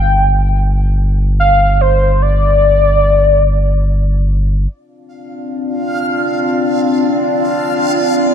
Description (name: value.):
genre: IDM.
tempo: free time.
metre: none.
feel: none.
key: D minor.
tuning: A4 = 440 Hz.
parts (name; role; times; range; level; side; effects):
warm velvety synth lead; melody; 0.0-4.3 s; C5 to G5; -13 LUFS; left 1 dB; chorus, tape echo.
round analog bass; bass; 0.0-4.7 s; G1; -13 LUFS; equal; none.
warbly tape-like pad; sustained chords; 5.3-8.3 s; C4 to D5; -14 LUFS; left 1 dB; chorus, built-in reverb.
backwards swelling texture; texture; 5.3-8.3 s; F5; -20 LUFS; right 3 dB; built-in reverb.
room: light reverb.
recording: none.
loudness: -11 LUFS.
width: side -8 dB against mid.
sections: 0.0-4.7 A section; 4.7-8.3 B section.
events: none.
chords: 0.0 G5; 4.7 Dm7.